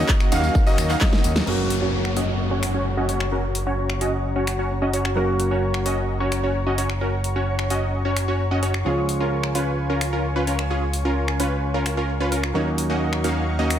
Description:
EDM, festival progressive house; 130 BPM; 4/4; straight; F# major; A4 = 443 Hz
lush unison pad; sustained chords; 0.0-13.8 s; C#3 to C#6; -31 LUFS; left 1 dB; chorus, sidechain pumping
clear grand piano; arpeggios; 0.0-1.4 s; D#5 to E#5; -28 LUFS; left 1 dB; sidechain pumping, ping-pong delay
supersaw stab; riff; 0.0-13.8 s; A#3 to E#5; -25 LUFS; equal; sidechain pumping, low-pass filter, ping-pong delay
fat analog bass; bass; 0.0-13.8 s; F#1 to D#2; -25 LUFS; equal; sidechain pumping
big-room dance drum kit; drums; 0.1-13.8 s; crash cymbal, finger snaps, handclaps, hi-hat, ride cymbal, snare drum, tambourine; -28 LUFS; left 1 dB
electronic kick drum; drums; 0.1-1.1 s; -19 LUFS; equal
felt-muted upright piano; accompaniment; 1.5-13.8 s; E#3 to F#4; -29 LUFS; right 1 dB; sidechain pumping, ping-pong delay
downlifter; sound effects; 1.5-5.2 s; -31 LUFS; left 2 dB
light reverb; -20 LUFS; side -10 dB against mid
0.0-1.5 A section; 1.5-13.8 B section
drop 0.0-1.5; drum fill 1.0-1.5; band accent 1.4; filter sweep on supersaw synth 1.5-13.8; filter sweep on analog synth pad 1.5-13.8
0.0 D#m7; 1.5 F#; 8.9 C#; 12.6 D#m7

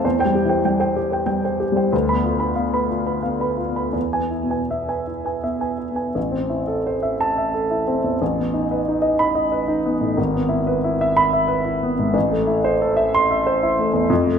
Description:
classical, romantic character piece for solo piano; 80-97 BPM; 3/4; rubato; A minor; A4 = 440 Hz
warm grand piano; solo; 0.0-14.4 s; G#1 to C6; -18 LUFS; equal
moderate recital hall reverb, RT60 1.6 s; -18 LUFS; side -7 dB against mid
0.0-6.2 A section; 6.2-14.4 B section
0.0 C/E; 1.9 Bdim/D; 4.0 E; 6.2 Am; 8.2 B7/A; 10.2 E/G#; 12.2 Am

